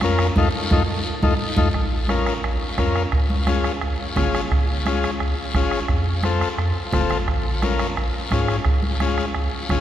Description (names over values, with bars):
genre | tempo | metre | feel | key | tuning
latin, cumbia | 174 BPM | 4/4 | straight | Bb minor | A4 = 440 Hz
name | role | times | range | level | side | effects
combo organ | accompaniment | 0.0-9.8 s | C4 to Bb4 | -24 LUFS | left 4 dB | none
warm sub bass | bass | 0.0-9.8 s | F1 to Ab2 | -24 LUFS | equal | none
bombo | percussion | 0.0-9.8 s | none | -24 LUFS | right 2 dB | none
congas | percussion | 0.0-9.8 s | none | -29 LUFS | left 1 dB | none
guiro | percussion | 0.0-9.8 s | none | -32 LUFS | left 3 dB | none
room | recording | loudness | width
wet cathedral reverb, RT60 4.6 s | recorded in a church or concert hall | -19 LUFS | side -11 dB against mid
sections
0.0-1.7 A section; 1.7-9.8 B section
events
band accent 0.4-1.7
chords
0.4 F7; 1.7 Bbm; 3.1 Db; 5.9 F; 7.3 Bbm; 8.7 Db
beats
0.02 | 0.37 0.71 1.06 1.40 | 1.75 2.09 2.44 2.79 | 3.13 3.48 3.82 4.17 | 4.51 4.86 5.21 5.55 | 5.90 6.24 6.59 6.93 | 7.28 7.63 7.97 8.32 | 8.66 9.01 9.36 9.70